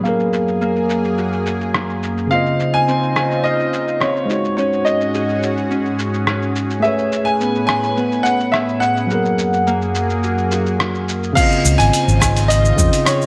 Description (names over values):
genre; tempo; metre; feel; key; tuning
sunset chillout; 106 BPM; 4/4; straight; Db major; A4 = 439 Hz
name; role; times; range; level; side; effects
bright tine electric piano; accompaniment; 0.0-13.3 s; Db3 to Gb5; -23 LUFS; equal; low-pass filter, digital delay
lush unison pad; sustained chords; 0.0-13.3 s; Gb2 to B4; -26 LUFS; equal; chorus, phaser
Celtic harp; arpeggios; 0.0-13.2 s; Bb3 to G#4; -27 LUFS; equal; digital delay
dusty soul sampler-style drum kit; drums; 0.1-13.3 s; crash cymbal, hi-hat, rim click, shaker; -25 LUFS; equal; low-pass filter on perc, low-pass filter on snare, low-pass filter on hats, low-pass filter on cymbals, low-pass filter on room
clear baby grand piano; melody; 2.3-13.3 s; Db5 to Ab5; -22 LUFS; equal; digital delay
electronic kick drum; drums; 11.4-12.9 s; none; -21 LUFS; equal; none
fingered electric bass; bass; 11.7-12.9 s; Ab1 to F2; -17 LUFS; equal; tube saturation
room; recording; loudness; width
moderate scoring stage reverb, RT60 1.8 s, digital ambience; none; -17 LUFS; mono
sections
0.0-11.4 A section; 11.4-13.3 B section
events
none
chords
0.0 Gbmaj9; 2.3 Dbmaj9; 4.3 Ab7sus4; 6.8 Amaj9; 9.1 Gbadd9; 11.4 Dbmaj9